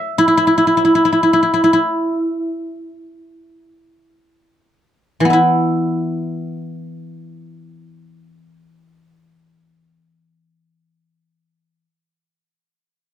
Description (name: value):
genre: chinese traditional, Chinese solo plucked strings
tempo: 36-50 BPM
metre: 2/4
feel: rubato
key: unclear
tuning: A4 = 440 Hz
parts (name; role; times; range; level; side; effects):
- guzheng; solo; 0.0-11.8 s; E3 to F#5; -14 LUFS; equal; none
room: moderate studio reverb, RT60 0.6 s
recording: dark, warm production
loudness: -13 LUFS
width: side -10 dB against mid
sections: 0.0-5.3 A section; 5.3-11.2 B section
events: slowing down 0.0-5.3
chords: none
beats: 0.91 | 2.21 3.72 | 5.31 6.81 | 8.26 9.73